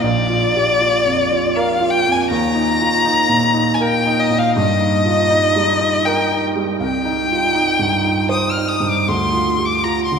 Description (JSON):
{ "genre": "classical, romantic duo for violin and grand piano", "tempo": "80 BPM", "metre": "3/4", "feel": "rubato", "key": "Eb major", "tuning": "A4 = 442 Hz", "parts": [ { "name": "rich violin", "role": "melody", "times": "0.0-10.2 s", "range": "D5 to F6", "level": "-16 LUFS", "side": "left 2 dB", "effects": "none" }, { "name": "warm grand piano", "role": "accompaniment", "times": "0.0-10.2 s", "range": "Bb1 to C5", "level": "-18 LUFS", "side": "right 2 dB", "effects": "none" } ], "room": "wet church reverb, RT60 3.5 s", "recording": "recorded in a church or concert hall", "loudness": "-14 LUFS", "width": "side -6 dB against mid", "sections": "0.0-10.2 A section", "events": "none", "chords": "0.0 Bb; 2.3 Eb5; 4.5 Eb/G; 6.8 Cm; 9.1 Bb/D (rootless)" }